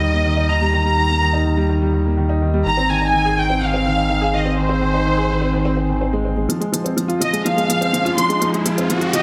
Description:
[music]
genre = piano and strings electronica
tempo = 125 BPM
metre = 4/4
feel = straight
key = F minor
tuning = A4 = 440 Hz
[part]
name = warm studio violin section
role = melody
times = 0.0-9.2 s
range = C5 to C6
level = -22 LUFS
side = equal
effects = digital delay
[part]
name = clear upright piano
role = riff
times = 0.0-9.2 s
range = Eb3 to Ab4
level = -22 LUFS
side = equal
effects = digital delay
[part]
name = warm sub bass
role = bass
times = 0.0-9.2 s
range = F1 to Eb2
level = -23 LUFS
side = equal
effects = high-pass filter
[part]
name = electronic hi-hat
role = drums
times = 6.5-9.2 s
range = none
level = -27 LUFS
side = equal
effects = studio reverb
[part]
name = riser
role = sound effects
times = 7.7-9.2 s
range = none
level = -28 LUFS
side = equal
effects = none
[sound]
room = moderate lush hall reverb, RT60 1.9 s, small room ambience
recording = none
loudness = -18 LUFS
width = mono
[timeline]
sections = 0.0-6.5 A section; 6.5-9.2 B section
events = build-up 6.5-9.2; riser 7.7-9.2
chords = 0.0 Eb; 2.7 Ab; 6.5 Fm

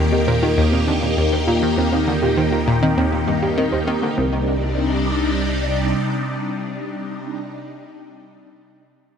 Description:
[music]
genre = ambient, sequencer-driven space music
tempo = 100 BPM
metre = 4/4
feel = straight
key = C minor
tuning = A4 = 441 Hz
[part]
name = phased string machine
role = sustained chords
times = 0.0-7.3 s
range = C3 to G4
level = -21 LUFS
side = left 1 dB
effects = ensemble chorus, phaser
[part]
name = analog pluck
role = riff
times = 0.0-4.5 s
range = C2 to Eb3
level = -21 LUFS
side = equal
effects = chorus, phaser, tape echo
[part]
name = warm sub bass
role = bass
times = 0.0-5.9 s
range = C2 to Eb2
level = -25 LUFS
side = equal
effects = none
[part]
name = soft round pluck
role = arpeggios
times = 0.1-4.5 s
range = G3 to C5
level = -25 LUFS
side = right 2 dB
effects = chorus, auto-pan, tape echo
[sound]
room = wet lush hall reverb, RT60 2.9 s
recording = none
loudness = -17 LUFS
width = side -7 dB against mid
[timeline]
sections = 0.0-4.2 A section; 4.2-6.6 B section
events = none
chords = 0.0 Ebadd9; 4.2 Cmadd9

